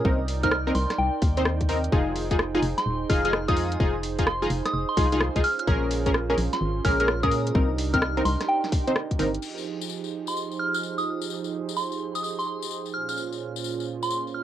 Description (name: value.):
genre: UK garage, two-step garage.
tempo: 128 BPM.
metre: 4/4.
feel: swing 65% on 16ths.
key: F minor.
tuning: A4 = 441 Hz.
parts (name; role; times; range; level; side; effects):
warm analog pad; sustained chords; 0.0-14.4 s; Bb2 to G5; -33 LUFS; right 8 dB; chorus, vintage 12-bit sampler grit, sidechain pumping, cassette tape.
punchy chord stab; stabs; 0.0-9.3 s; C4 to C5; -26 LUFS; equal; chorus, vintage 12-bit sampler grit, cassette tape.
organ-like FM bass; bass; 0.0-9.4 s; Eb1 to Bb2; -28 LUFS; left 1 dB; none.
electronic kick drum; drums; 0.0-9.2 s; none; -24 LUFS; left 1 dB; cassette tape.
garage drum kit; drums; 0.3-9.5 s; crash cymbal, hi-hat, rim click, snare drum; -31 LUFS; left 1 dB; cassette tape.
soft synth bell; melody; 0.4-14.4 s; G5 to F6; -29 LUFS; equal; chorus, phaser, cassette tape.
tambourine; percussion; 9.4-14.3 s; none; -37 LUFS; left 18 dB; none.
room: moderate booth ambience, RT60 0.2 s.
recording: home recording on cassette.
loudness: -23 LUFS.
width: side -11 dB against mid.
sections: 0.0-9.4 A section; 9.4-14.4 B section.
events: none.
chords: 0.0 Cm7; 1.9 Fm7; 5.4 Bbm7; 7.5 Cm7; 9.4 Fm7; 12.9 Bbm7.